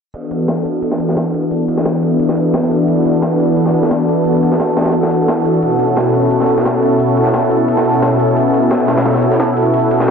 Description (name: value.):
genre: liquid drum and bass.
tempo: 175 BPM.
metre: 4/4.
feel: straight.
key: unclear.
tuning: A4 = 440 Hz.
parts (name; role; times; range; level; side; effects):
lush unison pad; sustained chords; 0.1-10.1 s; B2 to A4; -12 LUFS; equal; chorus.
breakbeat sampler-style drum kit; drums; 0.1-10.1 s; hi-hat, ride cymbal, snare drum; -21 LUFS; equal; high-pass filter on cymbals, studio reverb, high-pass filter on snare, high-pass filter on hats.
electronic hi-hat; drums; 0.1-10.1 s; none; -42 LUFS; left 1 dB; none.
room: moderate lush hall reverb, RT60 1.8 s.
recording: dense, heavily limited modern master, low-pass filter.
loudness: -12 LUFS.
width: side -6 dB against mid.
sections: 0.1-10.1 A section.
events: filter sweep 0.1-10.1.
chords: 0.1 E9sus4; 5.6 B9sus4.